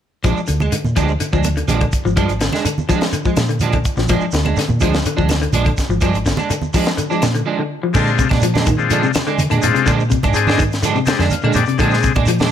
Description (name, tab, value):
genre	afrobeat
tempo	125 BPM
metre	4/4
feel	straight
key	Bb mixolydian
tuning	A4 = 440 Hz
part	semi-hollow electric guitar	arpeggios	0.2-12.5 s	C3 to F3	-22 LUFS	left 5 dB	none
part	electric guitar at the edge of break-up	stabs	0.2-12.5 s	F3 to D4	-21 LUFS	right 6 dB	ensemble chorus
part	hollow-body short-scale fingered electric bass	bass	0.2-12.5 s	Ab1 to D3	-19 LUFS	equal	none
part	tight funk drum kit	drums	0.2-12.5 s	crash cymbal, hi-hat, kick drum, snare drum	-20 LUFS	equal	none
part	claves	percussion	0.2-12.3 s	none	-32 LUFS	left 11 dB	none
part	congas	percussion	0.2-12.5 s	none	-25 LUFS	right 4 dB	none
part	shekere	percussion	0.2-12.5 s	none	-27 LUFS	right 3 dB	none
part	combo organ	accompaniment	7.9-12.1 s	Ab3 to F5	-20 LUFS	left 8 dB	none
room	light reverb, studio ambience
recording	none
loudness	-14 LUFS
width	side -9 dB against mid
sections	0.2-7.9 A section; 7.9-12.5 B section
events	break 7.5-7.9; transistor combo organ fill 11.1-11.8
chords	0.2 Bb7